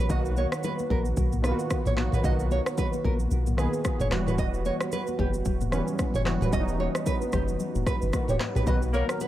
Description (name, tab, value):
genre	afrobeats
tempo	112 BPM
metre	4/4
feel	swing 58% on 16ths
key	B major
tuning	A4 = 440 Hz
part	warm analog keys	accompaniment	0.0-9.3 s	D#3 to B4	-31 LUFS	equal	chorus, dub echo
part	nylon-string guitar	riff	0.0-9.3 s	G4 to D#5	-32 LUFS	right 3 dB	dub echo
part	punchy sub bass	bass	0.0-9.0 s	D#1 to B1	-28 LUFS	equal	none
part	afro-pop drum kit	drums	0.1-9.3 s	handclaps, kick drum, rim click, shaker, toms	-29 LUFS	equal	none
part	congas	percussion	0.4-9.3 s	none	-37 LUFS	left 8 dB	none
part	soft octave-layered synth lead	melody	8.7-9.2 s	A#4 to B4	-38 LUFS	left 1 dB	chorus, dub echo
part	warm analog pad	sustained chords	8.7-9.3 s	B2 to A#4	-38 LUFS	left 2 dB	chorus
part	warm horn section	second line	8.9-9.1 s	A#3 to A#4	-32 LUFS	left 5 dB	none
room	little or no reverb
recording	echo-heavy mix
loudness	-24 LUFS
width	side -13 dB against mid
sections	0.1-8.7 A section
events	none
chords	0.1 Bmaj7; 4.1 Emadd9; 8.7 Bmaj7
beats	| 0.10 0.63 1.17 1.71 | 2.24 2.78 3.31 3.85 | 4.38 4.92 5.46 5.99 | 6.53 7.06 7.60 8.13 | 8.67 9.21